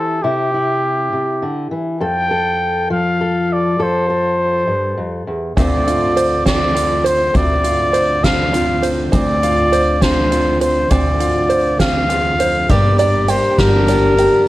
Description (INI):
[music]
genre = indie folk with a building arrangement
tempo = 67 BPM (dotted quarters)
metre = 6/8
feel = straight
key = D minor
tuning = A4 = 440 Hz
[part]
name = warm trumpet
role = melody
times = 0.0-14.5 s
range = G4 to G5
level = -18 LUFS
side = equal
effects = none
[part]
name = fingerpicked steel-string acoustic guitar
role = accompaniment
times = 0.0-14.5 s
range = D2 to A4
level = -20 LUFS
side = left 1 dB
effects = none
[part]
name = open-back banjo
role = arpeggios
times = 5.6-14.5 s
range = C4 to G5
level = -20 LUFS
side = right 3 dB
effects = analog delay
[part]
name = upright bass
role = bass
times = 5.6-14.3 s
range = G1 to D2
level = -20 LUFS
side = equal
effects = none
[part]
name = soft-mallet drum kit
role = drums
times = 5.6-14.3 s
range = hi-hat, kick drum, snare drum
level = -20 LUFS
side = equal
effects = none
[part]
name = picked steel-string acoustic guitar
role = accompaniment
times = 12.7-14.5 s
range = G3 to Bb4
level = -20 LUFS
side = left 2 dB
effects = none
[sound]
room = moderate large studio reverb, RT60 0.9 s, small room ambience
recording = worn, warbling old tape, cassette tape, warbly pitch drift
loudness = -13 LUFS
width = side -16 dB against mid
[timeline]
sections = 0.0-12.7 A section; 12.7-14.5 B section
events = none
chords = 0.0 C; 2.0 F; 5.6 Dm7; 12.7 Gm